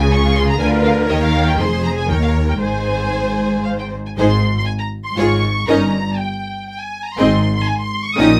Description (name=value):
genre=quick classical-period movement for string orchestra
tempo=120 BPM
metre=3/4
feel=straight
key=Ab major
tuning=A4 = 440 Hz
part: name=rich symphonic violin section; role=melody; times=0.0-8.4 s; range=Eb5 to Eb6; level=-25 LUFS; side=equal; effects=none
part: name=rich symphonic violin section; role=second line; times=0.0-8.4 s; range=F4 to Eb5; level=-25 LUFS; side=equal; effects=none
part: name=rich symphonic viola section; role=accompaniment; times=0.0-8.4 s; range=Ab3 to C5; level=-22 LUFS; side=equal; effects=none
part: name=dark symphonic double bass section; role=bass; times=0.0-8.4 s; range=F1 to Eb2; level=-22 LUFS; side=equal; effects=none
part: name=warm symphonic cello section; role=bass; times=0.0-8.4 s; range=Eb2 to Eb3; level=-24 LUFS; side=equal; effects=none
room=light reverb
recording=close, detailed microphones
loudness=-17 LUFS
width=mono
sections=0.0-4.2 A section; 4.2-8.4 B section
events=none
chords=0.0 Db; 0.6 Dm6; 1.1 Eb7; 1.6 Fm; 2.1 Eb5; 2.6 Ab; 5.2 Db/Ab; 5.7 Eb7/G; 7.2 Ab